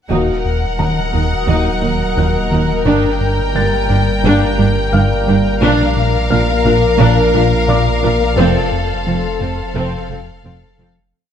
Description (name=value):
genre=cinematic, hybrid orchestral and electronic film score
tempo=87 BPM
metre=4/4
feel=straight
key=unclear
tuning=A4 = 441 Hz
part: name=warm symphonic violin section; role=melody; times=0.1-10.9 s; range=F5 to G5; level=-22 LUFS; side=left 5 dB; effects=none
part: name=warm symphonic violin section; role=second line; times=0.1-10.9 s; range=A4 to Bb4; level=-21 LUFS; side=left 3 dB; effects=none
part: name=warm symphonic viola section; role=accompaniment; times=0.1-10.9 s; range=C4 to Eb4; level=-22 LUFS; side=right 2 dB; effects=none
part: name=analog drone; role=sustained chords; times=0.7-11.1 s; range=F3 to Eb5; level=-21 LUFS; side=equal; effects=chorus
part: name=mellow French horn section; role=sustained chords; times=0.1-10.0 s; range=A3 to Gb4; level=-23 LUFS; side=left 3 dB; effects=none
part: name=round analog bass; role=riff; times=0.1-11.0 s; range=Eb2 to Bb3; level=-20 LUFS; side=left 3 dB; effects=none
part: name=warm sub bass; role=bass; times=0.1-11.1 s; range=Eb1 to Bb1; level=-21 LUFS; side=equal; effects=none
part: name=warm symphonic cello section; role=bass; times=0.1-10.9 s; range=Eb2 to Bb2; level=-21 LUFS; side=right 4 dB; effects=none
part: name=warm symphonic double bass section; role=bass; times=0.1-10.9 s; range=F1 to Eb2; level=-22 LUFS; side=right 5 dB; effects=none
part: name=felt-muted upright piano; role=texture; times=0.8-11.2 s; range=D5 to A6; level=-28 LUFS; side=left 1 dB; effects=tape echo
room=moderate scoring stage reverb, RT60 1.9 s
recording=none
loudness=-12 LUFS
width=side -8 dB against mid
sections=0.1-11.1 theme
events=fade-out 8.4-11.1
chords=0.1 Ebm; 2.9 Gm; 5.6 Bb; 8.4 F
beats=| 0.10 0.79 1.48 2.17 | 2.86 3.55 4.24 4.93 | 5.62 6.31 7.00 7.69 | 8.38 9.07 9.76 10.45